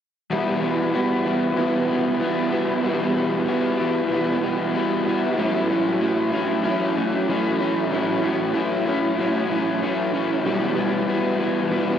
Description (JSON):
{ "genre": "rock", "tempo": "95 BPM", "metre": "4/4", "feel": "straight", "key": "unclear", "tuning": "A4 = 445 Hz", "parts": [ { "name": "direct-recorded clean electric guitar", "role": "arpeggios", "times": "0.3-12.0 s", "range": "F#3 to F#4", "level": "-27 LUFS", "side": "left 3 dB", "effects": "wide subtle chorus, diffuse ambient delay" }, { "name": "crunchy overdriven guitar", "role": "riff", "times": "0.3-12.0 s", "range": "E2 to E4", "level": "-23 LUFS", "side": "left 4 dB", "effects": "lush chorus" }, { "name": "electric guitar through a small old amp", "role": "riff", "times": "0.3-12.0 s", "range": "A2 to F#4", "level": "-24 LUFS", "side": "right 5 dB", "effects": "reverse reverb" } ], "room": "wet huge ambient reverb, RT60 7.3 s", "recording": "dreamy mix soaked in reverb", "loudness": "-20 LUFS", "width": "side -9 dB against mid", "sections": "0.3-12.0 A section", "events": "none", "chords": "0.3 Emadd9; 5.4 A6; 10.5 Emadd9", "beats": "| 0.33 0.96 1.59 2.23 | 2.86 3.50 4.13 4.76 | 5.40 6.03 6.66 7.29 | 7.92 8.56 9.19 9.82 | 10.45 11.08 11.72" }